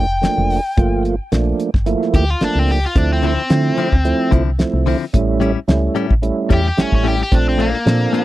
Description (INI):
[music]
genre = straight-eighth soul blues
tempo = 110 BPM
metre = 4/4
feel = swing 54% on 16ths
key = D minor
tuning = A4 = 440 Hz
[part]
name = cranked stack guitar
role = melody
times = 0.0-8.2 s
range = Bb3 to G5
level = -21 LUFS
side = left 2 dB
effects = overdrive
[part]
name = mellow tonewheel organ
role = accompaniment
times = 0.0-8.2 s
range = F3 to A4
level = -19 LUFS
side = right 4 dB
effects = overdrive, chorus vibrato, slow rotary speaker
[part]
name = woody FM bass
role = bass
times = 0.0-8.1 s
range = F1 to D3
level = -18 LUFS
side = equal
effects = none
[part]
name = cloth-damped thuddy drum kit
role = drums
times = 0.2-8.2 s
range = hi-hat, kick drum, snare drum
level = -16 LUFS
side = equal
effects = none
[part]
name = direct-recorded clean electric guitar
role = stabs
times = 3.2-8.2 s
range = A2 to F4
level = -20 LUFS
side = left 8 dB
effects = warbly pitch drift
[sound]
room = little or no reverb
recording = dry, close 1970s-style studio recording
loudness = -14 LUFS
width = side -16 dB against mid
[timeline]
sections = 0.0-8.2 A section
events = overdriven electric guitar solo 0.0-8.2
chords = 0.0 Gm9; 3.0 Dm9; 5.1 A7; 7.3 Bbmaj7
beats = 0.22 | 0.77 1.32 1.86 2.41 | 2.95 3.50 4.04 4.59 | 5.14 5.68 6.23 6.77 | 7.32 7.86